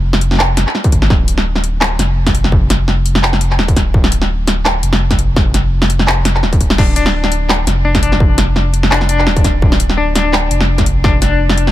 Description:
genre	half-time drum and bass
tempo	169 BPM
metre	4/4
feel	swing 54% on 16ths, half-time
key	D minor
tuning	A4 = 444 Hz
part	saturated sub bass	bass	0.0-11.7 s	D1 to G1	-15 LUFS	equal	none
part	drum and bass drum kit	drums	0.1-11.7 s	crash cymbal, handclaps, hi-hat, snare drum	-15 LUFS	equal	none
part	electronic kick drum	drums	0.8-11.1 s	none	-14 LUFS	equal	distortion
part	semi-hollow electric guitar	arpeggios	6.8-11.7 s	D4	-18 LUFS	left 5 dB	tremolo, digital delay
room	little or no reverb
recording	none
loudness	-11 LUFS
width	side -14 dB against mid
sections	0.0-11.7 A section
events	none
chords	0.0 Dm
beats	0.04 0.39 0.75 | 1.10 1.46 1.81 2.17 | 2.52 2.88 3.23 3.59 | 3.94 4.30 4.65 5.01 | 5.36 5.72 6.07 6.43 | 6.78 7.14 7.49 7.85 | 8.20 8.56 8.91 9.27 | 9.62 9.98 10.33 10.69 | 11.04 11.40

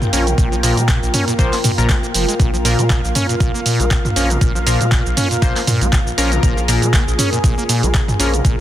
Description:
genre	acid house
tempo	119 BPM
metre	4/4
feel	swing 56% on 16ths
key	unclear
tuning	A4 = 442 Hz
part	dark analog pad	sustained chords	0.0-8.6 s	Bb3 to G5	-24 LUFS	equal	chorus, sidechain pumping
part	acid bass, saw	riff	0.0-8.6 s	Bb1 to Db4	-21 LUFS	equal	tube saturation, vintage 12-bit sampler grit, dub echo
part	punchy analog drum machine	drums	0.0-8.6 s	handclaps, hi-hat, shaker, toms	-20 LUFS	right 1 dB	none
part	ethereal airy pad	texture	0.0-8.6 s	F4 to Bb5	-26 LUFS	right 1 dB	ensemble chorus, built-in reverb, sidechain pumping
part	band-passed chord stab	stabs	0.1-8.3 s	F3 to C5	-25 LUFS	left 4 dB	chorus, phaser, vintage 12-bit sampler grit, dub echo
part	saturated sub bass	bass	0.1-8.6 s	F1 to Bb2	-20 LUFS	equal	sidechain pumping
part	electronic kick drum	drums	0.4-8.6 s	none	-16 LUFS	equal	none
room	light reverb, digital ambience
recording	dense, heavily limited modern master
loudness	-13 LUFS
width	side -12 dB against mid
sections	0.0-8.6 A section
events	none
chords	0.0 Bb5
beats	| 0.38 0.88 1.39 1.89 | 2.40 2.90 3.40 3.91 | 4.41 4.92 5.42 5.93 | 6.43 6.93 7.44 7.94 | 8.45

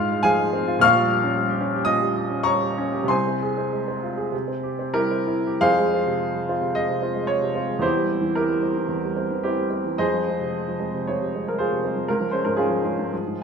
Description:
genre	classical, romantic character piece for solo piano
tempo	79-125 BPM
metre	4/4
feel	rubato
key	F minor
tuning	A4 = 440 Hz
part	clear baby grand piano	solo	0.0-13.4 s	Bb1 to F6	-20 LUFS	equal	none
room	moderate recital hall reverb, RT60 1.5 s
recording	minimal, uncompressed stereo recording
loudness	-20 LUFS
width	side -6 dB against mid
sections	0.0-5.6 A section; 5.6-13.4 B section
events	none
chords	0.0 Fm/Ab; 0.8 Gm7b5/Bb; 3.1 Fm/C; 4.3 C; 5.6 Fm; 7.8 C7/E; 10.0 Fm; 12.1 Db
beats	0.24 | 0.83 1.35 1.88 2.45 | 3.08 3.72 4.33 4.93 | 5.63 6.22 6.75 7.28 | 7.83 8.37 8.89 9.43 | 9.99 10.53 11.06 11.58 | 12.07 12.56 13.12

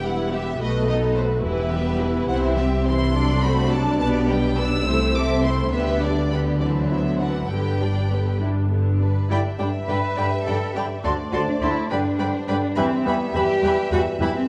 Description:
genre	quick classical-period movement for symphony orchestra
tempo	70 BPM (dotted quarters)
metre	6/8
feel	rubato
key	G major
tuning	A4 = 440 Hz
part	rich chamber violin section	melody	0.0-14.4 s	B4 to E6	-33 LUFS	equal	none
part	rich chamber violin section	second line	0.0-14.3 s	D4 to C6	-32 LUFS	equal	none
part	warm symphonic viola section	accompaniment	0.0-14.3 s	D3 to B4	-30 LUFS	equal	none
part	mellow French horn section	sustained chords	0.0-14.5 s	F#3 to C5	-31 LUFS	equal	none
part	rich chamber cello section	bass	0.0-14.4 s	E2 to B4	-27 LUFS	equal	none
part	rich chamber double bass section	bass	0.0-14.3 s	E1 to G2	-28 LUFS	equal	none
part	mellow clarinet	second line	9.3-14.3 s	G5 to A5	-34 LUFS	equal	none
part	mellow concert flute	second line	9.3-14.3 s	B5 to C6	-35 LUFS	equal	none
part	warm bassoon	accompaniment	9.3-14.3 s	D3 to E3	-33 LUFS	equal	none
room	wet recital hall reverb, RT60 1.6 s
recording	dark, warm production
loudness	-22 LUFS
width	mono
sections	0.0-9.3 A section; 9.3-14.5 B section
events	none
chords	0.0 Em; 0.6 B7; 1.5 Em; 2.3 C; 3.2 D7/C; 4.0 G/B; 4.9 Am/C; 5.7 G/D; 6.6 D13; 7.5 G; 11.1 D7(no3); 11.9 G; 12.8 Em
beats	| 0.61 1.45 | 2.30 3.15 | 4.01 4.87 | 5.73 6.61 | 7.51 8.41 | 9.30 10.18 | 11.05 11.91 | 12.78 13.64

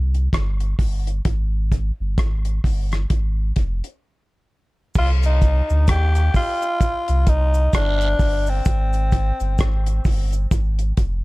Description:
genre	dub reggae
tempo	65 BPM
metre	4/4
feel	swing 60% on 16ths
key	C minor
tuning	A4 = 440 Hz
part	warm sub bass	bass	0.0-11.2 s	F1 to Eb2	-19 LUFS	equal	none
part	damped 70s drum kit	drums	0.1-11.2 s	crash cymbal, hi-hat, kick drum, rim click	-21 LUFS	equal	none
part	cabasa and guiro	percussion	4.9-11.2 s	none	-38 LUFS	right 9 dB	tape echo
part	growling tenor saxophone	melody	5.0-10.3 s	C4 to G4	-24 LUFS	left 1 dB	low-pass filter, tape echo
room	studio reverb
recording	dark, warm production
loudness	-17 LUFS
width	side -21 dB against mid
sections	0.0-5.0 A section; 5.0-11.2 B section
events	break 0.0-5.0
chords	0.0 C5; 1.3 Fmadd9 (rootless); 5.0 Cm; 8.7 Ab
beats	0.33 | 1.26 2.18 3.11 4.03 | 4.96 5.88 6.81 7.73 | 8.66 9.58 10.51

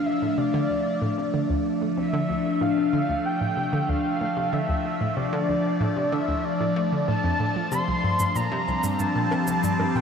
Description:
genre	ambient, sequencer-driven space music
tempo	94 BPM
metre	4/4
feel	straight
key	D minor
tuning	A4 = 437 Hz
part	breathy flute-like synth lead	melody	0.0-10.0 s	D5 to C6	-27 LUFS	equal	ensemble chorus, shimmer reverb, ping-pong delay
part	evolving wavetable pad	sustained chords	0.0-10.0 s	F3 to G4	-25 LUFS	left 2 dB	phaser, built-in reverb
part	analog pluck	riff	0.2-10.0 s	C2 to A3	-28 LUFS	right 1 dB	chorus, ping-pong delay
part	cabasa and bongos	percussion	7.7-9.9 s	none	-36 LUFS	right 2 dB	none
room	wet huge ambient reverb, RT60 7.9 s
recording	in a vast, echoing space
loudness	-22 LUFS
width	side -6 dB against mid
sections	0.0-10.0 A section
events	none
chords	0.0 Dm; 7.7 Csus4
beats	| 0.06 0.70 1.33 1.97 | 2.61 3.25 3.89 4.53 | 5.17 5.80 6.44 7.08 | 7.72 8.36 8.99 9.63

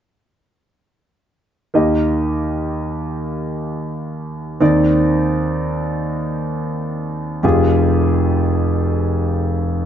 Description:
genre	folk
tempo	42 BPM (dotted quarters)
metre	6/8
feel	straight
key	Eb major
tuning	A4 = 438 Hz
part	warm grand piano	accompaniment	1.7-9.9 s	F1 to Eb5	-16 LUFS	equal	none
room	moderate studio reverb, RT60 0.9 s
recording	nothing above 7.6 kHz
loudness	-16 LUFS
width	side -9 dB against mid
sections	1.7-9.9 A section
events	none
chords	1.7 Eb; 4.6 Cmadd9/Eb; 7.4 Fmadd9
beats	| 1.74 3.18 | 4.61 6.02 | 7.43 8.85

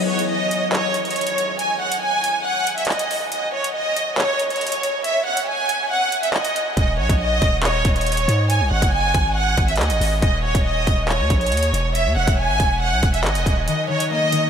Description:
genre	hip hop, drill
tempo	139 BPM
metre	4/4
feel	half-time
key	Eb phrygian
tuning	A4 = 441 Hz
part	warm studio violin section	melody	0.0-14.5 s	Db5 to Ab5	-20 LUFS	right 1 dB	tape echo
part	concert harp	accompaniment	0.0-2.8, 13.7-14.5 s	Eb3 to Db4	-26 LUFS	left 6 dB	none
part	drill drum kit	drums	0.2-14.4 s	handclaps, hi-hat, kick drum	-23 LUFS	equal	overdrive
part	long sustained 808-style bass	bass	6.8-13.7 s	Eb1 to Ab2	-22 LUFS	equal	none
room	wet huge ambient reverb, RT60 8.5 s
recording	dreamy mix soaked in reverb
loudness	-17 LUFS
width	side -8 dB against mid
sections	0.0-14.5 A section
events	break 0.0-6.8; kick muted 5.9-6.8, 13.7-14.5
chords	0.0 N.C.; 6.8 Eb5; 8.5 Ab7(no3); 10.2 Eb5; 11.9 E; 13.7 Eb7(no3)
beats	0.29 0.73 1.16 | 1.59 2.02 2.45 2.88 | 3.32 3.75 4.18 4.61 | 5.04 5.47 5.91 6.34 | 6.77 7.20 7.63 8.06 | 8.50 8.93 9.36 9.79 | 10.22 10.65 11.09 11.52 | 11.95 12.38 12.81 13.24 | 13.68 14.11

